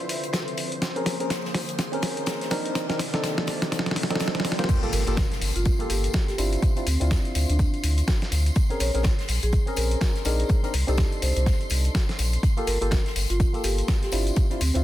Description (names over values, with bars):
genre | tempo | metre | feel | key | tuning
deep house | 124 BPM | 4/4 | swing 59% on 16ths | G minor | A4 = 440 Hz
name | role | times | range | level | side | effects
hollow soft pad | sustained chords | 0.0-4.7 s | C3 to E5 | -36 LUFS | equal | chorus, sidechain pumping
percussive organ stab | stabs | 0.0-14.8 s | Bb3 to C5 | -31 LUFS | equal | chorus, sidechain pumping, tape echo
dusty soul sampler-style drum kit | drums | 0.0-14.8 s | crash cymbal, hi-hat, snare drum | -29 LUFS | equal | none
riser and impact | sound effects | 0.0-6.6 s | none | -36 LUFS | right 2 dB | none
string machine, violins | texture | 0.0-14.8 s | C5 to C6 | -39 LUFS | equal | ensemble chorus
natural country drum kit | drums | 0.1-14.7 s | hi-hat, snare drum | -39 LUFS | left 3 dB | none
electronic kick drum | drums | 4.7-14.5 s | none | -23 LUFS | equal | overdrive
tambourine | percussion | 4.7-14.8 s | none | -37 LUFS | left 5 dB | none
marimba with soft mallets | melody | 4.9-14.7 s | C4 to Db5 | -33 LUFS | right 1 dB | tape echo
warm sub bass | bass | 4.9-14.8 s | G1 to D2 | -24 LUFS | equal | none
room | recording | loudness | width
light reverb | dense, heavily limited modern master | -22 LUFS | side -14 dB against mid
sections
0.0-4.7 A section; 4.7-14.8 B section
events
build-up 0.0-4.7; drum fill 0.0-4.7; riser 0.0-4.7; drop 4.7-14.8; impact 4.7-6.6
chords
0.0 Dm9; 0.8 Bbm9; 2.8 Cm9; 4.7 Gm9; 6.6 Dm9; 8.6 Bbm9; 10.5 Cm9; 12.4 Gm9